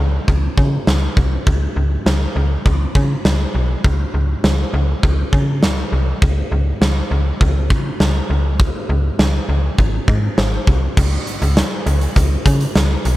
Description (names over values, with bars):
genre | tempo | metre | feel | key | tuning
synth-pop | 101 BPM | 4/4 | straight | unclear | A4 = 444 Hz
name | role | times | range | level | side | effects
slap-like FM bass | bass | 0.0-13.2 s | Ab1 to Db3 | -17 LUFS | equal | none
huge arena drum kit | drums | 0.3-13.2 s | crash cymbal, hi-hat, kick drum, snare drum | -17 LUFS | equal | none
room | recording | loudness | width
little or no reverb | none | -14 LUFS | side -16 dB against mid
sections
0.0-11.0 A section; 11.0-13.2 B section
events
none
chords
none